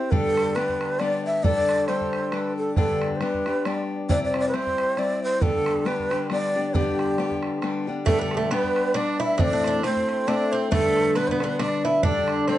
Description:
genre	celtic folk, Celtic waltz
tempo	136 BPM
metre	3/4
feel	swing 57% on 8ths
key	G major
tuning	A4 = 440 Hz
part	breathy long shakuhachi	melody	0.0-12.6 s	G4 to E5	-24 LUFS	right 1 dB	none
part	picked steel-string acoustic guitar	accompaniment	0.0-12.6 s	G2 to B4	-26 LUFS	left 3 dB	none
part	bodhran	percussion	0.1-12.6 s	none	-28 LUFS	right 2 dB	none
part	Irish bouzouki	second line	8.1-12.6 s	A3 to E4	-27 LUFS	right 3 dB	none
room	moderate studio reverb, RT60 0.5 s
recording	nothing above 10.5 kHz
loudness	-21 LUFS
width	side -13 dB against mid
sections	0.0-8.1 A section; 8.1-12.6 A section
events	none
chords	0.1 G; 1.4 Dsus4; 2.8 G; 4.1 C; 5.4 G; 9.4 Am; 10.7 G; 12.0 Dsus4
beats	| 0.12 0.56 1.00 | 1.44 1.89 2.33 | 2.77 3.21 3.65 | 4.09 4.54 4.98 | 5.42 5.86 6.30 | 6.75 7.19 7.63 | 8.07 8.51 8.95 | 9.39 9.84 10.28 | 10.72 11.16 11.60 | 12.04 12.48

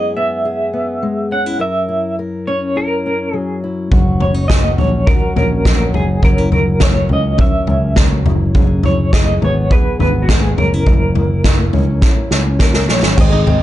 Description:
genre	indie folk with a building arrangement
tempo	104 BPM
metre	4/4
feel	straight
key	F# mixolydian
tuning	A4 = 440 Hz
part	electric guitar through a small old amp	melody	0.0-13.6 s	F#4 to F#5	-19 LUFS	right 1 dB	tremolo
part	fingerpicked old ladder-braced acoustic guitar	accompaniment	0.0-13.2 s	F#2 to A#4	-21 LUFS	left 2 dB	none
part	picked electric bass	bass	3.9-13.6 s	F#1 to D#2	-16 LUFS	equal	none
part	unplugged drum kit	drums	3.9-13.6 s	crash cymbal, kick drum, snare drum, toms	-14 LUFS	equal	none
part	picked twelve-string acoustic guitar	accompaniment	13.2-13.6 s	G#2 to G#4	-20 LUFS	left 5 dB	none
part	warm symphonic string section	sustained chords	13.2-13.6 s	D#3 to B#3	-25 LUFS	left 4 dB	none
part	bluegrass banjo	arpeggios	13.2-13.6 s	B#3 to D#4	-24 LUFS	right 7 dB	none
room	little or no reverb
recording	dark, warm production, nothing above 10.5 kHz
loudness	-12 LUFS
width	side -14 dB against mid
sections	0.0-13.2 A section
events	drum fill 12.0-13.2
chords	0.0 C#m7/F# (rootless); 1.6 F#7; 3.9 D#m7/F#; 6.2 F#7; 8.5 C#m7/F#; 10.9 F#7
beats	0.44 1.02 | 1.60 2.18 2.76 3.33 | 3.91 4.49 5.07 5.65 | 6.23 6.81 7.39 7.97 | 8.55 9.13 9.71 10.29 | 10.87 11.45 12.03 12.61 | 13.18

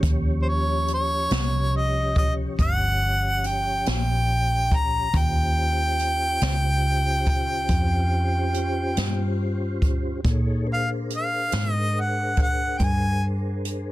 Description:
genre	slow blues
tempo	47 BPM (dotted quarters)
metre	12/8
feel	straight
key	Eb mixolydian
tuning	A4 = 439 Hz
part	mellow tonewheel organ	sustained chords	0.0-13.9 s	F3 to Db5	-32 LUFS	left 1 dB	chorus vibrato, slow rotary speaker
part	vintage muted fingered electric bass	bass	0.0-13.9 s	G1 to Bb2	-25 LUFS	equal	none
part	jazz brush drum kit	drums	0.0-13.8 s	hi-hat, kick drum, snare drum	-25 LUFS	equal	soft clipping on snare
part	clear harmonica	melody	0.4-13.2 s	C5 to Bb5	-25 LUFS	equal	overdrive
room	small room ambience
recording	dense, heavily limited modern master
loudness	-21 LUFS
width	side -16 dB against mid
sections	0.0-13.9 A section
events	none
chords	0.0 Eb13; 10.2 Bb13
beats	| 0.04 1.31 2.59 3.87 | 5.15 6.42 7.70 8.98 | 10.25 11.52 12.80

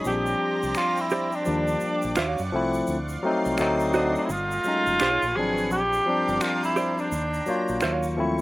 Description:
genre	R&B, neo-soul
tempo	85 BPM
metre	4/4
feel	swing 63% on 16ths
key	unclear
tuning	A4 = 444 Hz
part	barky tine electric piano	accompaniment	0.0-8.4 s	F3 to C#5	-26 LUFS	left 2 dB	none
part	lush unison pad	sustained chords	0.0-8.4 s	A3 to D6	-34 LUFS	right 1 dB	chorus
part	egg shaker and finger snaps	percussion	0.0-8.4 s	none	-36 LUFS	equal	none
part	breathy tenor saxophone	melody	0.1-8.0 s	D4 to G#4	-25 LUFS	equal	slapback echo
part	deep dub fingered electric bass	bass	0.1-8.4 s	G1 to Gb2	-31 LUFS	equal	none
part	hollow-body jazz guitar	second line	1.1-8.1 s	D#4 to F5	-26 LUFS	right 4 dB	none
room	little or no reverb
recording	recorded outdoors, with no room sound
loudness	-22 LUFS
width	side -18 dB against mid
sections	0.0-8.4 A section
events	none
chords	0.0 Bb69; 1.5 Ebmaj9; 2.2 Ebm9; 2.9 Dm7; 3.6 D7b9; 4.3 Gm9; 5.0 B69; 5.7 Bb69; 7.1 Ebmaj9; 7.8 Ebm9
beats	| 0.05 0.75 1.46 2.16 | 2.87 3.58 4.28 4.99 | 5.69 6.40 7.11 7.81

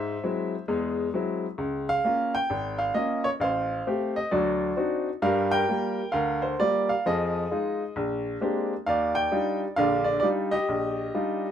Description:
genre	solo jazz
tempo	132 BPM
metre	4/4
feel	swing 65% on 8ths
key	Eb major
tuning	A4 = 440 Hz
part	clear baby grand piano	solo	0.0-11.5 s	Ab1 to G5	-24 LUFS	equal	none
room	light reverb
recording	minimal, uncompressed stereo recording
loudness	-24 LUFS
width	side -9 dB against mid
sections	0.0-11.5 A section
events	none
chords	0.0 Abaug7; 1.6 Db6; 3.4 F9/A; 4.3 D7b9; 5.2 Gm7; 7.0 Fm7; 8.0 Bb13; 8.9 Ebmaj9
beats	0.22 0.67 1.13 | 1.58 2.04 2.49 2.95 | 3.40 3.86 4.32 4.77 | 5.22 5.68 6.13 6.59 | 7.04 7.50 7.95 8.41 | 8.86 9.32 9.77 10.23 | 10.68 11.14

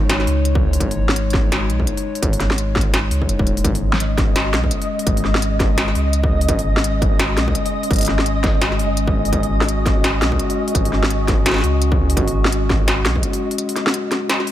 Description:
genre	half-time drum and bass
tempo	169 BPM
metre	4/4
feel	swing 59% on 16ths, half-time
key	unclear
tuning	A4 = 440 Hz
part	dark analog pad	sustained chords	0.0-14.5 s	G#3 to D#5	-23 LUFS	left 3 dB	chorus, vintage 12-bit sampler grit, sidechain pumping
part	saturated sub bass	bass	0.0-13.2 s	D#1 to C#2	-20 LUFS	equal	tube saturation
part	industrial drum kit	drums	0.1-14.5 s	hi-hat, snare drum	-21 LUFS	equal	none
part	electronic kick drum	drums	0.6-13.2 s	none	-21 LUFS	equal	distortion
part	flickering grainy texture	texture	3.9-14.5 s	D#5	-27 LUFS	right 1 dB	built-in reverb
room	light reverb, digital ambience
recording	none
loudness	-16 LUFS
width	side -12 dB against mid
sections	0.0-14.5 A section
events	none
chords	0.0 G#5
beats	0.10 0.45 | 0.81 1.16 1.51 1.87 | 2.23 2.58 2.94 3.29 | 3.65 4.00 4.36 4.71 | 5.07 5.42 5.78 6.13 | 6.49 6.84 7.20 7.55 | 7.91 8.26 8.62 8.97 | 9.33 9.68 10.04 10.39 | 10.75 11.10 11.46 11.81 | 12.17 12.52 12.88 13.23 | 13.59 13.94 14.30

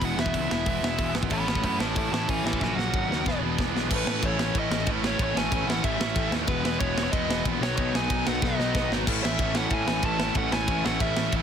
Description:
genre	punk rock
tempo	186 BPM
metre	4/4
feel	straight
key	unclear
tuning	A4 = 440 Hz
part	dark smooth lead guitar	melody	0.0-11.3 s	B4 to B5	-30 LUFS	left 1 dB	overdrive
part	overdriven electric guitar	riff	0.0-11.4 s	A2 to G#4	-31 LUFS	right 15 dB	none
part	overdriven semi-hollow guitar	riff	0.0-11.4 s	E2 to B3	-32 LUFS	left 14 dB	none
part	tight distorted guitar	riff	0.0-11.4 s	A2 to F#4	-33 LUFS	equal	distortion
part	fuzz picked electric bass	bass	0.0-11.4 s	E1 to A2	-31 LUFS	equal	overdrive
part	tight metal drum kit	drums	0.0-11.4 s	crash cymbal, hi-hat, kick drum, ride cymbal, snare drum, splash cymbal	-29 LUFS	equal	none
room	little or no reverb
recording	dense, heavily limited modern master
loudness	-23 LUFS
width	side -8 dB against mid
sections	0.0-3.9 A section; 3.9-11.4 B section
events	lead electric guitar solo 0.0-3.9; drum fill 2.6-3.9, 8.4-9.1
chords	0.0 E; 1.3 A; 2.6 F#/A#; 3.3 E7; 3.9 A; 6.5 E; 7.6 B; 9.1 A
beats	| 0.02 0.34 0.67 0.99 | 1.32 1.64 1.97 2.29 | 2.61 2.94 3.26 3.58 | 3.91 4.23 4.55 4.88 | 5.20 5.52 5.84 6.16 | 6.49 6.81 7.13 7.45 | 7.77 8.10 8.42 8.74 | 9.06 9.39 9.71 10.03 | 10.36 10.68 11.00 11.33

